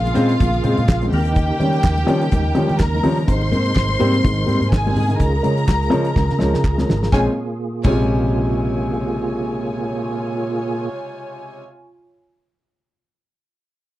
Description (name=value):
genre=disco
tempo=125 BPM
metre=4/4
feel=swing 56% on 16ths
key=Bb dorian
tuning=A4 = 440 Hz
part: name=dark studio string section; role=second line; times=0.0-11.6 s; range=F4 to C6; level=-24 LUFS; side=equal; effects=none
part: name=percussive tonewheel organ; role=sustained chords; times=0.0-10.9 s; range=Bb2 to Bb4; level=-26 LUFS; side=right 2 dB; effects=chorus vibrato, fast rotary speaker
part: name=vintage muted fingered electric bass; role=bass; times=0.0-11.6 s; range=Ab1 to Eb3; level=-21 LUFS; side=equal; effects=none
part: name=dark grand piano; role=accompaniment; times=0.1-11.6 s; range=Ab2 to Db4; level=-22 LUFS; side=left 1 dB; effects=none
part: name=damped 70s drum kit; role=drums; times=0.1-8.0 s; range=crash cymbal, hi-hat, kick drum, snare drum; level=-18 LUFS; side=equal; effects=none
part: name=congas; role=percussion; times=0.1-8.0 s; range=none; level=-28 LUFS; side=left 3 dB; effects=none
part: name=group handclap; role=percussion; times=0.9-8.0 s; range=none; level=-36 LUFS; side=right 4 dB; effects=none
room=small room ambience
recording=dry, close 1970s-style studio recording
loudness=-16 LUFS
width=side -15 dB against mid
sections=0.0-7.1 A section; 7.1-11.0 B section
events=drum fill 6.2-7.1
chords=0.0 Bbm7; 1.1 Eb7; 3.3 Abmaj7; 5.2 Db; 7.1 Bbm7